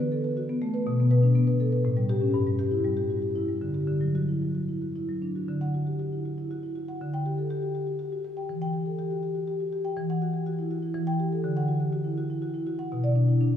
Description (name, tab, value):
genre	classical, contemporary piece for solo marimba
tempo	121 BPM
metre	3/4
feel	rubato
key	D major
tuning	A4 = 440 Hz
part	marimba with soft mallets	solo	0.0-13.6 s	G2 to G5	-25 LUFS	left 1 dB	none
room	wet church reverb, RT60 3.2 s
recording	heard from further back in the room, small room ambience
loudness	-25 LUFS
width	side -9 dB against mid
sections	0.0-5.5 A section; 5.5-13.6 B section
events	none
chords	0.0 D6; 0.9 Bm; 1.9 A7; 2.3 G5; 3.9 Dadd9; 7.0 A7sus4/D (rootless); 8.5 Emadd9; 11.0 Em; 11.4 D; 12.9 Bm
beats	0.36 | 0.86 1.36 1.85 | 2.35 2.85 3.36 | 3.89 4.43 4.96 | 5.49 6.00 6.51 | 7.00 7.50 7.99 | 8.49 8.98 9.48 | 9.96 10.46 10.95 | 11.44 11.93 12.42 | 12.91 13.40